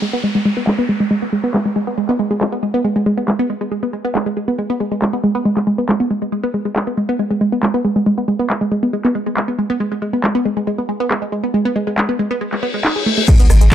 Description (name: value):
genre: driving peak-time techno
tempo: 138 BPM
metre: 4/4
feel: straight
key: G# minor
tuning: A4 = 439 Hz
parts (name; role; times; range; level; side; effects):
- wide unison pluck; riff; 0.0-13.7 s; G#3 to G#4; -16 LUFS; equal; tube saturation, sidechain pumping, tape echo
- techno drum kit; drums; 0.0-13.7 s; crash cymbal, handclaps, hi-hat, rim click; -21 LUFS; equal; low-pass filter on hats, low-pass filter on snare, low-pass filter on cymbals
- downlifter, reverse cymbal and impact; sound effects; 0.0-2.8, 12.6-13.7 s; none; -24 LUFS; left 2 dB; none
- electronic kick drum; drums; 13.3-13.7 s; none; -11 LUFS; equal; none
- saturated sub bass; bass; 13.4-13.7 s; G#1; -10 LUFS; equal; overdrive, sidechain pumping, low-pass filter
room: light reverb, digital ambience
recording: dry, gritty hardware recording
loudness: -15 LUFS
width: side -10 dB against mid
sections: 0.0-13.3 A section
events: filter sweep on synth arpeggio sound 0.0-13.3; reverse cymbal 12.6-13.3; impact 13.3-13.7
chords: 0.0 G#5